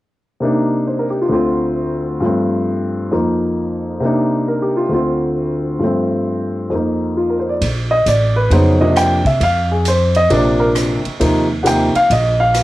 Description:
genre	jazz piano trio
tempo	134 BPM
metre	4/4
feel	swing 65% on 8ths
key	Bb major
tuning	A4 = 440 Hz
part	warm grand piano	melody	0.4-12.6 s	D2 to G5	-15 LUFS	equal	cassette tape
part	upright bass	bass	7.6-12.6 s	A1 to C3	-17 LUFS	equal	none
part	swinging big-band drum kit	drums	7.6-12.6 s	hi-hat, kick drum, ride cymbal, rim click	-25 LUFS	right 2 dB	cassette tape
room	moderate studio reverb, RT60 0.5 s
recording	home recording on cassette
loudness	-14 LUFS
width	side -16 dB against mid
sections	0.4-7.6 A section; 7.6-12.6 B section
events	none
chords	0.4 Cm9; 1.3 Dm7; 2.2 G9sus4; 3.1 F7sus4; 4.0 Cm9; 4.9 Dm7; 5.8 G9sus4; 6.7 F7sus4; 7.6 Bbadd9; 9.4 F5; 10.3 Bbadd9; 11.2 Ebsus2

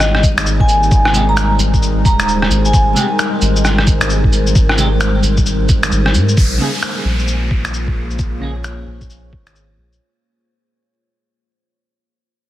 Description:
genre	future garage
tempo	132 BPM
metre	4/4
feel	swing 62% on 16ths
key	Bb dorian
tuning	A4 = 440 Hz
part	vibraphone with hard mallets	melody	0.0-3.0 s	Eb5 to Bb5	-19 LUFS	equal	tape echo
part	deep dark ambient pad	sustained chords	0.0-10.0 s	G3 to Db5	-20 LUFS	left 1 dB	chorus, built-in reverb, vintage 12-bit sampler grit, sidechain pumping
part	soft dub sub bass	bass	0.0-10.0 s	Eb1 to Ab2	-17 LUFS	equal	sidechain pumping
part	electronic rim click, shaker, cabasa and finger snaps	drums	0.0-10.0 s	none	-19 LUFS	equal	soft clipping on snare
part	electronic kick drum	drums	0.2-9.4 s	none	-14 LUFS	equal	none
part	semi-hollow electric guitar	accompaniment	1.1-8.5 s	C3 to Ab4	-24 LUFS	right 1 dB	phaser, sidechain pumping, tape echo
part	downlifter	sound effects	6.4-10.0 s	none	-24 LUFS	equal	none
room	light reverb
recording	dense, heavily limited modern master, vinyl crackle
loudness	-12 LUFS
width	side -14 dB against mid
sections	0.0-6.4 A section; 6.4-10.0 B section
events	fade-out 6.4-10.0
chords	0.0 Abmaj7; 6.4 Bbm7

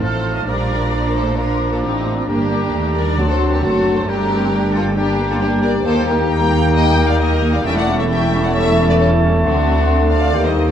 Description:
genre	quick classical-period movement for symphony orchestra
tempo	134 BPM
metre	4/4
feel	straight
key	unclear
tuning	A4 = 445 Hz
part	rich studio violin section	melody	0.0-10.7 s	D4 to G5	-27 LUFS	left 4 dB	none
part	bright oboe	second line	0.0-10.7 s	G5 to Bb5	-27 LUFS	right 1 dB	none
part	mellow clarinet	second line	0.0-10.7 s	D4 to E4	-26 LUFS	left 1 dB	none
part	mellow hollow flute section	second line	0.0-10.7 s	Bb5 to F6	-28 LUFS	left 4 dB	none
part	rich studio violin section	second line	0.0-10.7 s	F4 to Bb5	-24 LUFS	left 2 dB	none
part	rich studio viola section	accompaniment	0.0-10.7 s	Eb3 to G4	-23 LUFS	right 1 dB	none
part	warm bassoon	accompaniment	0.0-10.7 s	F3 to Bb3	-24 LUFS	right 2 dB	none
part	mellow French horn section	sustained chords	0.0-10.7 s	A3 to A4	-24 LUFS	left 4 dB	none
part	rich studio cello section	bass	0.0-10.7 s	D2 to Bb2	-21 LUFS	right 1 dB	none
part	warm studio double bass section	bass	0.0-10.7 s	E1 to Eb2	-21 LUFS	right 2 dB	none
part	timpani	percussion	3.2-3.8 s	D3	-28 LUFS	equal	none
room	moderate scoring stage reverb, RT60 1.9 s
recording	dark, warm production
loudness	-14 LUFS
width	side -9 dB against mid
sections	0.0-10.7 A section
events	none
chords	0.5 Bb; 2.3 Gm; 3.2 D7; 4.1 Gm; 5.9 Eb; 7.7 A7/E; 9.4 D7

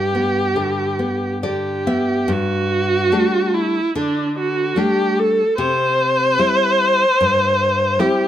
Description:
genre	fado-style ballad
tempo	68-76 BPM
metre	4/4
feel	rubato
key	G major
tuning	A4 = 440 Hz
part	warm viola	melody	0.0-8.3 s	D4 to C5	-17 LUFS	right 1 dB	plate reverb
part	nylon-string guitar	accompaniment	0.0-8.3 s	G2 to E5	-21 LUFS	left 2 dB	none
room	moderate small room reverb, RT60 0.6 s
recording	none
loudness	-15 LUFS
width	side -11 dB against mid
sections	0.0-2.3 A section; 2.3-8.3 A section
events	nylon-string guitar fill 1.0-2.3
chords	0.0 G; 2.3 Gsus2; 5.6 C

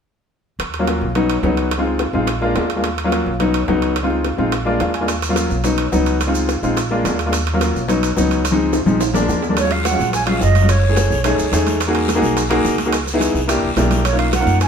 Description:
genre	Afro-Cuban jazz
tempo	214 BPM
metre	4/4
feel	straight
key	Eb minor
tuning	A4 = 440 Hz
part	upright bass	bass	0.6-14.7 s	Gb1 to F#2	-21 LUFS	equal	none
part	bongos	percussion	0.6-14.7 s	none	-29 LUFS	left 4 dB	none
part	timbales	percussion	0.6-14.7 s	none	-26 LUFS	right 5 dB	none
part	warm grand piano	accompaniment	0.8-14.6 s	F3 to Ab5	-18 LUFS	left 1 dB	none
part	maracas	percussion	5.1-14.7 s	none	-29 LUFS	right 4 dB	none
part	breathy concert flute	melody	9.6-11.7, 14.0-14.7 s	Db5 to Ab5	-20 LUFS	right 7 dB	none
part	congas	percussion	9.6-14.7 s	none	-29 LUFS	right 2 dB	none
part	guiro	percussion	9.6-14.7 s	none	-31 LUFS	left 3 dB	none
room	moderate stone room reverb, RT60 1.1 s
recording	band playing live in one room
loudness	-15 LUFS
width	side -7 dB against mid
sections	0.6-9.6 A section; 9.6-14.7 B section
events	grand piano fill 4.5-5.1; drum fill 8.7-9.6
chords	0.6 Ebm7; 1.2 Badd9; 1.7 Dbmaj7; 2.3 Bb7; 2.8 Ebm7; 3.4 Badd9; 4.0 Dbmaj7; 4.5 Bb7; 5.1 Ebm7; 5.6 Badd9; 6.2 Dbmaj7; 6.8 Bb7; 7.3 Ebm7; 7.9 Badd9; 8.4 Dbmaj7; 9.0 Bb7; 9.6 Ebm11; 10.7 Gbm7; 11.2 B13; 11.8 Emaj9#11; 12.9 Dbm7; 13.5 C9; 14.0 Bmaj9#11

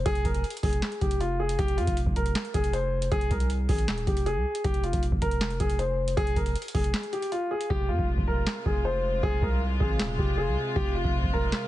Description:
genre	hip hop, trap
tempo	157 BPM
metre	4/4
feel	half-time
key	F minor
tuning	A4 = 440 Hz
part	warm concert grand piano	melody	0.0-11.7 s	F4 to C5	-30 LUFS	left 1 dB	ping-pong delay
part	long sustained 808-style bass	bass	0.0-11.5 s	Eb1 to F2	-29 LUFS	equal	none
part	booming analog drum machine	drums	0.1-11.6 s	handclaps, hi-hat, kick drum, snare drum	-28 LUFS	equal	vintage 12-bit sampler grit
part	warm studio string section	sustained chords	7.7-11.7 s	C3 to F4	-34 LUFS	left 1 dB	none
room	small room ambience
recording	heavily compressed radio sound, multiband compression, nothing above 10.3 kHz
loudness	-24 LUFS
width	side -14 dB against mid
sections	0.0-11.7 A section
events	break 6.9-7.7; hi-hats muted 7.7-11.7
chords	0.0 Fm

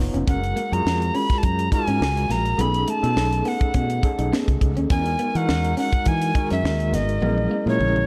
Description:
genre	polished 1980s jazz-funk pop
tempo	104 BPM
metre	4/4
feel	swing 54% on 16ths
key	unclear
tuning	A4 = 435 Hz
part	overdriven tine electric piano	accompaniment	0.0-8.1 s	D#3 to C#5	-29 LUFS	equal	medium tremolo, lush chorus
part	mellow fretless electric bass	bass	0.0-8.0 s	E#1 to E3	-26 LUFS	equal	none
part	tight funk drum kit	drums	0.0-8.1 s	hi-hat, kick drum, snare drum, toms	-26 LUFS	equal	none
part	electric guitar at the edge of break-up	riff	0.1-7.7 s	A3 to D#4	-33 LUFS	equal	subtle chorus
part	mellow hollow soprano recorder	melody	0.3-8.1 s	C#5 to B5	-28 LUFS	equal	none
room	light reverb, small room ambience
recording	dark, warm production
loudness	-22 LUFS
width	mono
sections	0.0-8.1 A section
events	drum fill 7.2-8.1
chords	0.3 F#maj9; 2.6 B13; 4.9 Emaj9#11; 7.2 A#m7b5

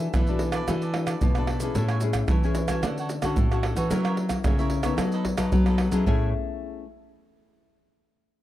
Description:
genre	samba and choro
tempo	111 BPM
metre	4/4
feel	straight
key	A major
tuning	A4 = 442 Hz
part	warm concert grand piano	melody	0.0-1.5 s	E5	-45 LUFS	left 1 dB	none
part	nylon-string guitar	accompaniment	0.0-6.8 s	A2 to A#4	-30 LUFS	left 7 dB	none
part	nylon-string guitar	bass	0.0-6.3 s	A2 to F#3	-26 LUFS	equal	none
part	cavaquinho	accompaniment	0.1-6.3 s	D4 to G#5	-36 LUFS	right 3 dB	none
part	maracas, surdo, pandeiro and tamborim	percussion	0.1-6.2 s	none	-26 LUFS	right 1 dB	none
room	small room ambience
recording	dry, close 1970s-style studio recording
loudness	-22 LUFS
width	side -14 dB against mid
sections	0.0-1.8 A section; 1.8-6.1 B section; 6.1-8.2 C section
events	none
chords	0.0 E9sus4; 1.8 Amaj7; 2.8 Dmaj7; 3.9 F#7; 5.0 B7/F#; 6.1 Amaj7

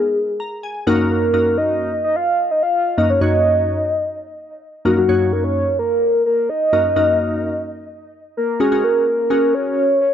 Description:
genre	pop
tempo	128 BPM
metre	4/4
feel	straight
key	Eb minor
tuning	A4 = 440 Hz
part	soft octave-layered synth lead	melody	0.0-10.1 s	Gb4 to F5	-17 LUFS	equal	chorus, phaser, tape echo
part	glassy digital keys	accompaniment	0.4-9.8 s	Gb2 to Bb5	-19 LUFS	left 1 dB	chorus
room	moderate booth ambience, RT60 0.2 s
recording	dry, close 1970s-style studio recording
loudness	-15 LUFS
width	side -9 dB against mid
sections	0.0-8.6 A section; 8.6-10.1 B section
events	synth keys fill 0.2-1.1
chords	0.0 Absus2; 0.9 Ebm/Gb; 8.6 Gbadd9

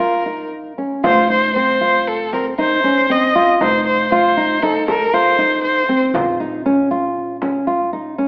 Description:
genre	contemporary instrumental, chamber music in an uneven meter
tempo	118 BPM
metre	5/4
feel	straight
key	unclear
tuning	A4 = 439 Hz
part	rich violin	melody	0.0-6.0 s	A4 to Eb5	-16 LUFS	equal	none
part	nylon-string guitar	arpeggios	0.0-8.3 s	C4 to A4	-17 LUFS	equal	none
part	upright bass	bass	0.0-8.3 s	F1 to Bb1	-28 LUFS	equal	none
part	frame drum	percussion	1.0-8.3 s	none	-27 LUFS	equal	none
room	wet recital hall reverb, RT60 1.8 s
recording	AM radio sound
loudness	-13 LUFS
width	side -35 dB against mid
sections	0.0-1.0 A section; 1.0-8.3 B section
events	none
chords	0.0 Gbmaj7/Bb (rootless); 1.0 F7(no3); 6.1 Bbm

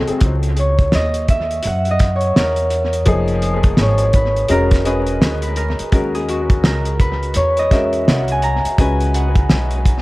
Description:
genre	hip hop, jazz-hop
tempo	84 BPM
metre	4/4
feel	swing 61% on 16ths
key	unclear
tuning	A4 = 441 Hz
part	concert harp	melody	0.0-10.0 s	F#4 to A#5	-20 LUFS	right 1 dB	dub echo
part	warm upright piano	accompaniment	0.0-9.8 s	E#3 to B4	-22 LUFS	left 2 dB	dub echo
part	upright bass	bass	0.0-10.0 s	E1 to F#2	-20 LUFS	equal	none
part	cloth-damped thuddy drum kit	drums	0.1-10.0 s	hi-hat, kick drum, snare drum	-16 LUFS	equal	none
room	light reverb, studio ambience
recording	echo-heavy mix, vinyl crackle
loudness	-14 LUFS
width	side -20 dB against mid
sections	0.0-10.0 A section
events	harp solo 0.0-10.0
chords	0.2 C#madd9; 3.1 C#13/E#; 4.5 E7#11; 5.9 D#m7; 8.8 C#5

